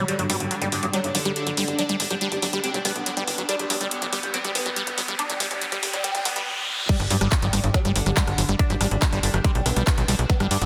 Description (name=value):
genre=psychedelic trance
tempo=141 BPM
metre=4/4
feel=straight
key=G major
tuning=A4 = 440 Hz
part: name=pulsing gated texture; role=sustained chords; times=0.0-10.7 s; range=D3 to F#4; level=-36 LUFS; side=equal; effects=chorus, built-in reverb, sidechain pumping
part: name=liquid acid bass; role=riff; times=0.0-10.7 s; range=F#3 to G3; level=-31 LUFS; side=equal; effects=phaser, cassette tape, sidechain pumping, tape echo
part: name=tight sequencer bass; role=bass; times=0.0-10.7 s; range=G1 to G2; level=-29 LUFS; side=equal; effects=none
part: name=oud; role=melody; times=0.1-10.7 s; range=G2 to D4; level=-32 LUFS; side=equal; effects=phaser, sidechain pumping, tape echo
part: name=techno drum kit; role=drums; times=0.1-10.7 s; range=crash cymbal, handclaps, hi-hat, rim click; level=-30 LUFS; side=equal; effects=none
part: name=riser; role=sound effects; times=2.2-6.9 s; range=none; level=-34 LUFS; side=equal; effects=none
part: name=vowel-sweep wobble bass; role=second line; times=0.3-2.7, 7.1-9.0 s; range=B3 to G4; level=-38 LUFS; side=equal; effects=none
part: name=electronic kick drum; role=drums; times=6.9-10.4 s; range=none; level=-25 LUFS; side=equal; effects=overdrive
room=moderate lush hall reverb, RT60 1.9 s, digital ambience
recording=dense, heavily limited modern master, high-pass filter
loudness=-24 LUFS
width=mono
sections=0.0-6.9 A section; 6.9-10.7 B section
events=build-up 0.0-6.9; filter sweep on acid bass 0.0-6.9; filter sweep 0.0-6.9; riser 2.2-6.9; drop 6.9-10.7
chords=0.0 G5